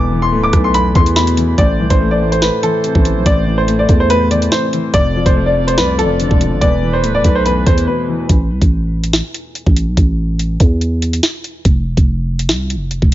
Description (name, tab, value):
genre	hip hop, drill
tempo	143 BPM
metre	4/4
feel	half-time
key	A minor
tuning	A4 = 440 Hz
part	clear upright piano	melody	0.0-8.3 s	A4 to D6	-17 LUFS	equal	tape echo
part	dark concert grand piano	accompaniment	0.0-8.3 s	E2 to A3	-19 LUFS	left 3 dB	low-pass filter
part	warm woodwind section	sustained chords	0.0-8.3 s	E3 to D5	-24 LUFS	right 2 dB	stereo widening
part	growling 808-style bass	bass	0.0-13.1 s	D1 to E2	-16 LUFS	equal	none
part	drill drum kit	drums	0.5-13.1 s	hi-hat, kick drum, rim click, snare drum	-14 LUFS	equal	none
room	small room ambience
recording	nothing above 7.5 kHz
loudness	-12 LUFS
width	side -14 dB against mid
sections	0.0-1.6 A section; 1.6-8.3 B section; 8.3-13.1 C section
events	break 7.9-8.3; filter sweep on grand piano 8.3-13.1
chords	0.0 Esus4; 1.6 Am; 4.9 F6; 6.6 Esus4; 8.3 A5; 11.7 F5